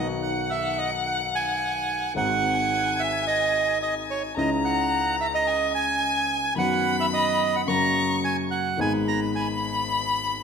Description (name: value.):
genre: tango.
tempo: 109 BPM.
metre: 4/4.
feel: rubato.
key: B major.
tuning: A4 = 442 Hz.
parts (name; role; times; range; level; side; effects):
bandoneon; melody; 0.0-9.5 s; C#5 to A#5; -25 LUFS; right 5 dB; none.
rich violin; second line; 0.0-10.4 s; F#5 to C#6; -28 LUFS; left 4 dB; none.
warm grand piano; accompaniment; 0.0-10.4 s; G#1 to G#4; -28 LUFS; left 2 dB; none.
room: moderate concert hall reverb, RT60 2.2 s.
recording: minimal, uncompressed stereo recording.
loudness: -22 LUFS.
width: side -6 dB against mid.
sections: 0.0-10.4 A section.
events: none.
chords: 0.0 B; 2.2 G#7; 4.4 C#madd9; 6.6 B/F#; 7.7 F#; 8.8 G#m.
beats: 0.51 1.06 1.61 | 2.16 2.72 3.27 3.82 | 4.37 4.92 5.47 6.02 | 6.58 7.13 7.68 8.24 | 8.79 9.35 9.90.